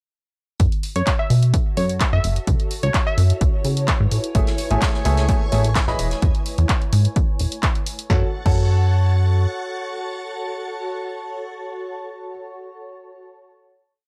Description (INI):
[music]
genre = piano house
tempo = 128 BPM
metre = 4/4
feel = straight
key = F# minor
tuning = A4 = 440 Hz
[part]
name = plucky analog bass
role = bass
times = 0.6-9.5 s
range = E1 to C#3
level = -20 LUFS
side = equal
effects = sidechain pumping
[part]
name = electronic kick drum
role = drums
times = 0.6-8.6 s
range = none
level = -23 LUFS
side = equal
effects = none
[part]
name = punchy analog drum machine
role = drums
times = 0.6-8.6 s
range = crash cymbal, handclaps, hi-hat, snare drum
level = -29 LUFS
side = equal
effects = none
[part]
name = granular cloud pad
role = texture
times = 1.8-12.2 s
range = E4 to A5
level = -34 LUFS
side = equal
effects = built-in reverb, sidechain pumping
[part]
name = glassy wavetable pluck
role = melody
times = 1.0-3.4 s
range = C#5 to E5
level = -29 LUFS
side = equal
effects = chorus, tape echo
[part]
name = string machine, violins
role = sustained chords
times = 4.3-11.9 s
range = C#5 to A6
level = -36 LUFS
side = equal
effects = ensemble chorus, sidechain pumping
[part]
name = clear upright piano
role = riff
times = 4.3-12.3 s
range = E3 to B5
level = -30 LUFS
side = equal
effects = vintage 12-bit sampler grit, sidechain pumping, tape echo
[part]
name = unplugged drum kit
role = drums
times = 4.3-6.2 s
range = hi-hat, snare drum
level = -36 LUFS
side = equal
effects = sidechain pumping on hats, high-pass filter on hats, high-pass filter on snare, high-pass filter on room
[sound]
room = studio reverb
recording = dry, gritty hardware recording, cassette tape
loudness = -20 LUFS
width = mono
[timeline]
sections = 0.6-8.1 groove; 8.1-11.8 final chord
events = none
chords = 0.6 F#m; 2.5 C#m7; 4.1 Amaj7; 6.0 Emaj7; 8.1 F#m